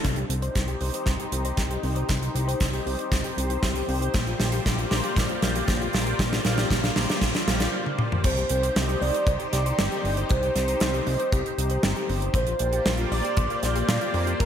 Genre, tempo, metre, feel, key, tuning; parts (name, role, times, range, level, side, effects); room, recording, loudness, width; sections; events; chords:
synthwave; 117 BPM; 4/4; straight; C minor; A4 = 441 Hz
lush unison pad; sustained chords; 0.0-14.5 s; Bb3 to D5; -30 LUFS; left 1 dB; chorus, phaser, sidechain pumping
thumb-piano-like synth pluck; arpeggios; 0.0-14.5 s; Bb3 to C5; -34 LUFS; left 2 dB; chorus, digital delay
fat analog bass; bass; 0.0-14.5 s; G1 to Bb2; -27 LUFS; equal
gated 80s drum kit; drums; 0.0-14.5 s; crash cymbal, hi-hat, snare drum, toms; -27 LUFS; right 1 dB; gated reverb
kick drum; drums; 0.0-14.5 s; -26 LUFS; equal
warm velvety synth lead; melody; 8.2-14.5 s; G4 to D5; -29 LUFS; right 1 dB; chorus, digital delay
FM electric piano with soft pad layer; second line; 8.2-14.5 s; G4 to D5; -34 LUFS; right 4 dB
moderate plate reverb, RT60 1.5 s, small room ambience; bright 1980s-style digital production; -22 LUFS; side -9 dB against mid
0.0-8.2 A section; 8.2-14.5 B section
band accent 0.0; drum fill 0.0-7.7, 7.9-8.2; break 7.7-8.2
0.0 Cm; 4.1 Bb6; 8.2 Cm; 12.3 Bb6